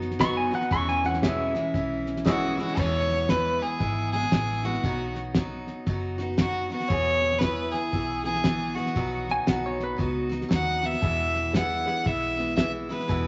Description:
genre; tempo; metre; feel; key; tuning
honky-tonk and classic country; 116 BPM; 4/4; swing 63% on 8ths; E major; A4 = 439 Hz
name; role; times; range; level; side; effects
picked steel-string acoustic guitar; accompaniment; 0.0-13.3 s; E2 to G#4; -33 LUFS; equal; none
vintage muted fingered electric bass; bass; 0.0-13.3 s; F#1 to E2; -36 LUFS; equal; none
cloth-damped thuddy drum kit; drums; 0.0-13.2 s; crash cymbal, hi-hat, kick drum, snare drum; -31 LUFS; equal; none
pedal steel guitar; second line; 0.2-2.2, 9.3-10.4 s; F#4 to C#6; -30 LUFS; equal; none
clear upright piano; accompaniment; 0.2-2.7, 11.5-13.0 s; F#4 to E5; -39 LUFS; equal; none
clear fiddle; melody; 2.3-13.3 s; F#4 to F#5; -30 LUFS; equal; none
room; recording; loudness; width
wet large studio reverb, RT60 1.3 s; vinyl crackle, nothing above 7.8 kHz; -26 LUFS; mono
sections
0.0-2.8 A section; 2.8-13.3 B section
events
pedal steel guitar solo 0.0-2.8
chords
0.0 B; 0.7 E6; 2.8 E; 4.8 B; 6.9 E; 9.0 B; 11.0 E

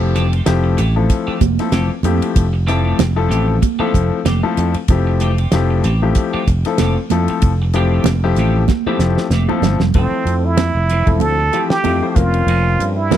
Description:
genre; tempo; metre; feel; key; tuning
electric jazz fusion; 95 BPM; 4/4; swing 56% on 16ths; F major; A4 = 440 Hz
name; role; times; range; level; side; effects
clear concert grand piano; accompaniment; 0.0-13.2 s; F3 to C5; -20 LUFS; left 7 dB; none
clean electric guitar; stabs; 0.0-13.2 s; E3 to G4; -27 LUFS; right 2 dB; lush chorus
sustaining fretless electric bass; bass; 0.0-13.2 s; E1 to G2; -16 LUFS; equal; none
damped 70s drum kit; drums; 0.2-13.2 s; hi-hat, kick drum, ride cymbal, snare drum; -18 LUFS; right 1 dB; none
congas; percussion; 0.8-13.2 s; none; -22 LUFS; right 15 dB; none
trumpet with plunger mute; melody; 10.0-13.2 s; C4 to A4; -18 LUFS; right 4 dB; slapback echo
room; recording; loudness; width
little or no reverb; dry, close 1970s-style studio recording; -13 LUFS; side -11 dB against mid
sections
0.0-10.0 A section; 10.0-13.2 B section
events
drum fill 8.7-10.0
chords
0.0 Fmaj9; 10.0 Fmaj7; 12.2 Bbmadd9/F

